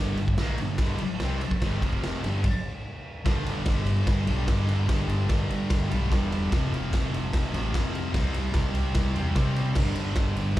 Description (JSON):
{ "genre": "garage rock duo or trio", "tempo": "147 BPM", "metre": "4/4", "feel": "straight", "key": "unclear", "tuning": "A4 = 440 Hz", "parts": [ { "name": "thick fuzz guitar", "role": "riff", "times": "0.0-10.6 s", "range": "F2 to C4", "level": "-28 LUFS", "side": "equal", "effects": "distortion" }, { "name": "overdriven fingered electric bass", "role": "bass", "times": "0.0-10.6 s", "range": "E1 to C3", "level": "-28 LUFS", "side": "equal", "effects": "none" }, { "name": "raw garage drum kit", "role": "drums", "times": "0.2-10.6 s", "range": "crash cymbal, kick drum, ride cymbal, snare drum", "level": "-28 LUFS", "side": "equal", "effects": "none" } ], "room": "small room ambience", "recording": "live gig heard through the venue's PA, club reverb", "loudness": "-24 LUFS", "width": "side -15 dB against mid", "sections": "0.0-3.2 A section; 3.2-10.6 B section", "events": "none", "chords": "0.0 G5; 1.8 F5; 2.2 G5; 2.8 N.C.; 3.2 G5; 6.5 F5; 8.1 C5; 9.8 G5" }